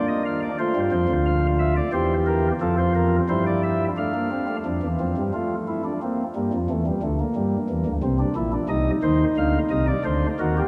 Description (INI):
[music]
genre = classical, baroque-style 3-part fugue for pipe organ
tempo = 89 BPM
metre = 3/4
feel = straight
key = unclear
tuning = A4 = 440 Hz
[part]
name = pipe organ, flutes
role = solo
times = 0.0-10.7 s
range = Bb1 to F5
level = -23 LUFS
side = equal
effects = none
[sound]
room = wet cathedral reverb, RT60 5.4 s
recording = none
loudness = -23 LUFS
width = mono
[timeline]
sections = 0.0-4.7 A section; 4.7-10.7 B section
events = none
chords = 0.0 Bb; 0.6 F; 1.9 C7/E; 2.6 F; 4.0 F/A; 4.7 F; 6.0 Bb5; 6.7 Em7b5; 8.0 Bbadd9; 8.7 Cmadd9; 10.1 D